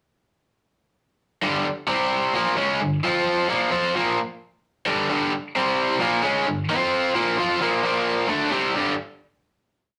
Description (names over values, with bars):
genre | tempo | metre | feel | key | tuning
rock | 132 BPM | 4/4 | straight | G minor | A4 = 440 Hz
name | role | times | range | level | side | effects
overdriven electric guitar | solo | 1.4-8.9 s | G2 to F4 | -22 LUFS | equal | none
room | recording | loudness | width
moderate studio reverb, RT60 0.6 s | rough rehearsal-room recording, warm saturation | -23 LUFS | mono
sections
1.4-8.7 riff; 8.7-10.0 final chord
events
none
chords
1.4 G5; 1.9 C5; 2.4 Gm; 3.0 F5; 3.5 Gm; 5.5 C5; 6.0 Gm; 6.7 F5; 7.2 Bbsus2; 7.8 Bb5; 8.3 G5